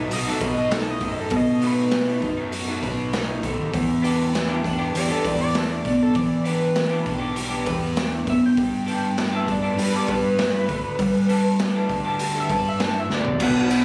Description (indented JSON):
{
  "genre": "indie rock",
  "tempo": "99 BPM",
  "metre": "4/4",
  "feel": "straight",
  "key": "unclear",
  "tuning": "A4 = 439 Hz",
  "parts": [
    { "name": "electric guitar through a small old amp", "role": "riff", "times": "0.0-13.8 s", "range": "F#3 to A4", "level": "-28 LUFS", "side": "left 1 dB", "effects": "none" },
    { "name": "overdriven semi-hollow guitar", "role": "riff", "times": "0.0-13.8 s", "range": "B2 to B4", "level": "-26 LUFS", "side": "equal", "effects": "lush chorus" },
    { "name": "fuzz fingered electric bass", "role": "bass", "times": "0.0-13.8 s", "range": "B1 to G3", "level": "-24 LUFS", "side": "equal", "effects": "overdrive" },
    { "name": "overdriven synth lead", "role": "melody", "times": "0.1-13.8 s", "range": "A4 to A5", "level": "-26 LUFS", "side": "equal", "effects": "distortion, chorus, tape echo" },
    { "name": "raw garage drum kit", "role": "drums", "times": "0.1-13.8 s", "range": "crash cymbal, hi-hat, kick drum, snare drum, toms", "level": "-27 LUFS", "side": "equal", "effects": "none" },
    { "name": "string machine, full ensemble", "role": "sustained chords", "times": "13.4-13.8 s", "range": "F#4 to B5", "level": "-32 LUFS", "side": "equal", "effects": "ensemble chorus" },
    { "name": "tambourine", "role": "percussion", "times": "13.7-13.8 s", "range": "none", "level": "-34 LUFS", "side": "equal", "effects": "none" }
  ],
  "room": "light reverb",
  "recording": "recorded on a phone in the room, club reverb, compression",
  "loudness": "-19 LUFS",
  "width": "side -29 dB against mid",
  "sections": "0.0-13.4 A section",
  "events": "analog synth lead solo 0.0-13.4; drum fill 13.1-13.4",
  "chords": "0.0 B7; 3.7 Em7; 8.6 Gadd9",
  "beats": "0.11 0.71 | 1.32 1.92 2.53 3.13 | 3.74 4.34 4.95 5.55 | 6.15 6.76 7.36 7.97 | 8.57 9.18 9.78 10.38 | 10.99 11.59 12.19 12.79 | 13.39"
}